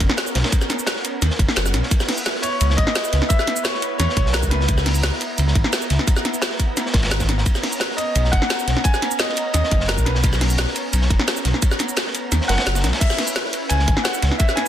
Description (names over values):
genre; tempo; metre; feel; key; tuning
liquid drum and bass; 173 BPM; 4/4; straight; C# dorian; A4 = 439 Hz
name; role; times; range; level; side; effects
bright grand piano; melody; 0.0-4.8, 8.0-10.4, 12.5-14.7 s; A#4 to G#5; -25 LUFS; equal; vintage 12-bit sampler grit, dub echo
lush unison pad; sustained chords; 0.0-14.7 s; B3 to A#5; -28 LUFS; right 1 dB; chorus, sidechain pumping
dark detuned saw bass; bass; 0.0-14.3 s; F#1 to E2; -20 LUFS; equal; none
crunchy breakbeat drum kit; drums; 0.0-14.7 s; hi-hat, ride cymbal, snare drum; -27 LUFS; equal; high-pass filter on cymbals, high-pass filter on hats, high-pass filter on snare, high-pass filter on room
drum and bass drum kit; drums; 0.0-14.6 s; cabasa, crash cymbal, hi-hat, snare drum; -23 LUFS; equal; none
electronic kick drum; drums; 0.0-14.5 s; none; -19 LUFS; equal; none
room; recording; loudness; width
light reverb, small room ambience; dense, heavily limited modern master; -17 LUFS; side -11 dB against mid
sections
0.0-1.9 A section; 1.9-14.7 A section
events
drop 0.0-1.9, 1.9-14.7; kick drops out 1.6-1.9, 12.3-13.0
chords
0.0 Bmaj7sus2; 1.9 C#m7; 7.5 Bmaj7sus2; 13.0 C#m7